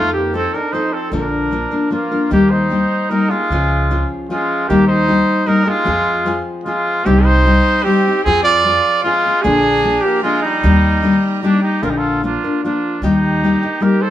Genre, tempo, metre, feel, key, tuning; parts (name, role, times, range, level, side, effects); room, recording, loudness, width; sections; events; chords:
mexican folk, mariachi; 152 BPM; 3/4; straight; Eb major; A4 = 440 Hz
warm trumpet; melody; 0.0-14.1 s; D4 to D5; -17 LUFS; right 1 dB
warm trumpet; second line; 0.0-14.1 s; G3 to C5; -22 LUFS; right 4 dB
nylon-string guitar; accompaniment; 0.0-14.1 s; Bb2 to Bb4; -17 LUFS; left 2 dB
upright bass; bass; 0.0-13.5 s; Bb1 to F2; -20 LUFS; right 1 dB
warm studio violin section; sustained chords; 7.1-11.8 s; G4 to C6; -30 LUFS; right 1 dB
wet studio reverb, RT60 0.7 s; band playing live in one room; -13 LUFS; side -12 dB against mid
0.0-2.3 A section; 2.3-11.8 B section; 11.8-14.1 C section
0.0 F7; 1.1 Bb; 2.3 Eb; 3.5 Db; 4.7 Eb; 5.9 Fm; 7.1 Cm; 8.3 Fm; 9.4 Bb7; 10.6 Eb; 11.8 Bb; 13.0 Eb